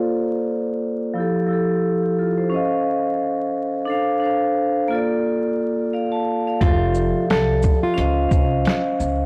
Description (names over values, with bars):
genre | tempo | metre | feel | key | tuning
lo-fi hip hop | 88 BPM | 4/4 | swing 56% on 16ths | F major | A4 = 440 Hz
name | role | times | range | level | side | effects
nylon-string guitar | melody | 0.0-1.1, 6.6-8.8 s | F4 to A4 | -26 LUFS | equal | low-pass filter
vibraphone with hard mallets | accompaniment | 0.0-9.3 s | F3 to A5 | -22 LUFS | equal | cassette tape, low-pass filter
upright bass | bass | 6.6-9.3 s | F1 to Db2 | -25 LUFS | equal | transformer saturation
lo-fi sampler-style drum kit | drums | 6.6-9.2 s | hi-hat, kick drum, shaker, snare drum | -22 LUFS | equal | none
room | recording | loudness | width
light reverb, small room reverb | dry, gritty hardware recording, transformer saturation, vinyl crackle | -21 LUFS | mono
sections
0.0-6.6 A section; 6.6-9.3 B section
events
filter sweep 0.0-6.6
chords
0.0 Bbmaj7; 1.2 Fmaj9; 2.5 Dbmaj9; 3.9 Dm7; 4.9 Bbmaj7; 6.6 Fmaj9; 8.0 Dbmaj9